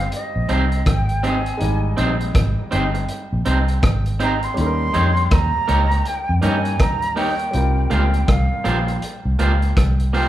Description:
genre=lovers rock reggae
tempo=81 BPM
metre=4/4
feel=swing 61% on 16ths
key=Ab major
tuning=A4 = 440 Hz
part: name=mellow concert flute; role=melody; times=0.0-10.3 s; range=Eb5 to C6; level=-24 LUFS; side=right 1 dB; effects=none
part: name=clear grand piano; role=accompaniment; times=0.0-10.3 s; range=G3 to Eb5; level=-30 LUFS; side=left 1 dB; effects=dub echo
part: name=vintage muted fingered electric bass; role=bass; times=0.0-10.3 s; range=G1 to G2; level=-20 LUFS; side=equal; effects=none
part: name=crunchy breakbeat drum kit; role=drums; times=0.1-10.3 s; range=hi-hat, kick drum, rim click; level=-21 LUFS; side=equal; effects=none
part: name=electric guitar through a small old amp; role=stabs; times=0.5-10.3 s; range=Bb3 to Db5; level=-24 LUFS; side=right 2 dB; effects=spring reverb
room=moderate large studio reverb, RT60 1.2 s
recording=band playing live in one room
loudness=-16 LUFS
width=side -13 dB against mid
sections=0.0-10.3 A section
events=none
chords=0.0 Abmaj7; 4.6 Eb7; 7.5 C7sus4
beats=0.12 0.86 | 1.60 2.35 3.09 3.83 | 4.57 5.31 6.06 6.80 | 7.54 8.28 9.02 9.77

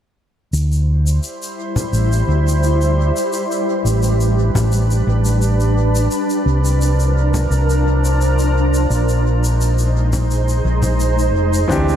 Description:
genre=sunset chillout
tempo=86 BPM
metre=4/4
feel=straight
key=unclear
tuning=A4 = 442 Hz
part: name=shimmering ambient pad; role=sustained chords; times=1.3-12.0 s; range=F3 to C5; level=-20 LUFS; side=right 1 dB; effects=chorus, built-in reverb
part: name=fingered electric bass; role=bass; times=0.5-12.0 s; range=F1 to D2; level=-15 LUFS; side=equal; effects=tube saturation
part: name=shaker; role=drums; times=0.5-12.0 s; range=none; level=-30 LUFS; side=left 2 dB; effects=tape echo
part: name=congas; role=percussion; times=1.8-11.0 s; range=none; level=-24 LUFS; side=left 2 dB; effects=tape echo
part: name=clear concert grand piano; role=accompaniment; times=11.7-12.0 s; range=E3 to G4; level=-16 LUFS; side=equal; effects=auto-pan, vintage 12-bit sampler grit
part: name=electronic kick drum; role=drums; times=11.7-11.8 s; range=none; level=-24 LUFS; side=equal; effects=none
room=light reverb, small room ambience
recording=echo-heavy mix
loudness=-14 LUFS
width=side -10 dB against mid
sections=0.5-12.0 A section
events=none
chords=0.5 D9sus4; 3.3 A9sus4; 6.1 C9sus4; 8.9 Bb9sus4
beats=| 0.53 1.23 1.93 2.62 | 3.32 4.02 4.72 5.41 | 6.11 6.81 7.51 8.21 | 8.90 9.60 10.30 10.99 | 11.69

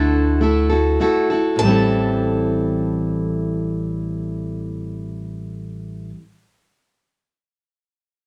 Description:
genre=folk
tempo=96 BPM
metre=3/4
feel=straight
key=A dorian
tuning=A4 = 438 Hz
part: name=picked acoustic archtop guitar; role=melody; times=0.0-6.1 s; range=A5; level=-30 LUFS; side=equal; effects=none
part: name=picked plugged-in steel-string acoustic guitar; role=accompaniment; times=0.0-6.2 s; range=A2 to A4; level=-22 LUFS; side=equal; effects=none
part: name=deep dub fingered electric bass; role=bass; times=0.0-6.1 s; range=A1 to D2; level=-26 LUFS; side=equal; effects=none
room=wet club reverb, RT60 0.6 s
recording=none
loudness=-20 LUFS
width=mono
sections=0.0-1.6 A section; 1.6-5.3 B section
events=slowing down 0.0-1.6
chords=0.0 Dadd9; 1.6 Am7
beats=0.41 0.99 | 1.60 2.23 2.85 | 3.47 4.09 4.72

